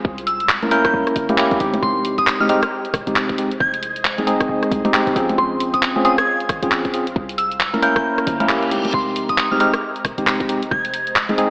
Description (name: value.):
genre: UK garage, two-step garage.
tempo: 135 BPM.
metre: 4/4.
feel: swing 60% on 16ths.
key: F minor.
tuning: A4 = 440 Hz.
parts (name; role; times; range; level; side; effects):
ethereal airy pad; sustained chords; 0.0-11.5 s; Ab3 to Bb5; -33 LUFS; equal; none.
short 808-style bass; bass; 0.0-11.4 s; Eb1 to C2; -29 LUFS; equal; sidechain pumping.
electronic kick drum; drums; 0.0-10.8 s; none; -25 LUFS; equal; none.
garage drum kit; drums; 0.2-11.5 s; congas, handclaps, hi-hat, rim click; -21 LUFS; equal; none.
soft synth bell; melody; 0.3-11.2 s; C6 to Ab6; -21 LUFS; equal; chorus, phaser, analog delay.
tine electric piano; stabs; 0.6-11.5 s; Ab3 to Bb4; -19 LUFS; equal; low-pass filter, analog delay.
reverse cymbal; sound effects; 8.3-8.9 s; none; -31 LUFS; equal; none.
room: wet lush hall reverb, RT60 1.8 s, digital ambience.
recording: dreamy mix soaked in reverb, AM radio sound.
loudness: -16 LUFS.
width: side -28 dB against mid.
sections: 0.0-11.5 A section.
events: reverse cymbal 8.3-8.9.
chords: 0.0 C7b9; 1.8 Fm9; 5.2 Bbm9; 7.2 C7b9; 8.9 Fm9.